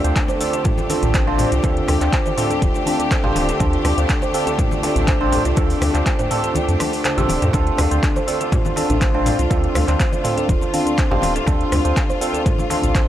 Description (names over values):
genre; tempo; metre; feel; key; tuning
afro house; 122 BPM; 4/4; straight; D minor; A4 = 440 Hz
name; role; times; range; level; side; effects
rich symphonic string section; sustained chords; 0.0-13.1 s; D3 to G4; -25 LUFS; left 2 dB; sidechain pumping
buzzing kalimba; arpeggios; 0.0-13.1 s; D4 to C5; -24 LUFS; equal; sidechain pumping, tape echo
barky tine electric piano; stabs; 0.0-13.0 s; C4 to C5; -24 LUFS; right 3 dB; overdrive, phaser, sidechain pumping, tape echo
warm sub bass; bass; 0.0-13.1 s; D1 to F2; -21 LUFS; equal; sidechain pumping
afro-pop drum kit; drums; 0.0-13.1 s; cabasa, handclaps, hi-hat, rim click, toms; -26 LUFS; equal; none
electronic kick drum; drums; 0.2-13.1 s; none; -20 LUFS; equal; overdrive
djembe; percussion; 0.2-13.1 s; none; -31 LUFS; right 1 dB; none
congas; percussion; 0.3-13.1 s; none; -30 LUFS; left 3 dB; none
room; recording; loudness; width
small room ambience; dry, gritty hardware recording; -16 LUFS; side -12 dB against mid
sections
0.0-13.1 A section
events
kick drops out 6.6-7.5; drum fill 6.8-7.5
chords
0.0 Dm7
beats
0.16 0.65 1.15 | 1.64 2.13 2.62 3.11 | 3.60 4.10 4.59 5.08 | 5.57 6.06 6.55 7.05 | 7.54 8.03 8.52 9.01 | 9.51 10.00 10.49 10.98 | 11.47 11.96 12.46 12.95